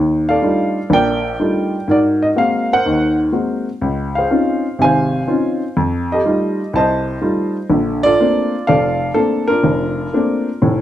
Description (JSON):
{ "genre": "solo jazz", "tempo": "124 BPM", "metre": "4/4", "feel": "swing 69% on 8ths", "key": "Bb major", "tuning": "A4 = 439 Hz", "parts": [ { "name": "dark baby grand piano", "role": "solo", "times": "0.0-10.8 s", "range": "F1 to A5", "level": "-14 LUFS", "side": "equal", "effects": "none" } ], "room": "light reverb", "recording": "none", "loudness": "-14 LUFS", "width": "side -12 dB against mid", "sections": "0.0-10.8 A section", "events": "none", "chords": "0.0 Ebmaj9#11; 1.9 Ab9; 3.8 Dbmaj9; 5.8 F9; 7.7 Bbmaj9" }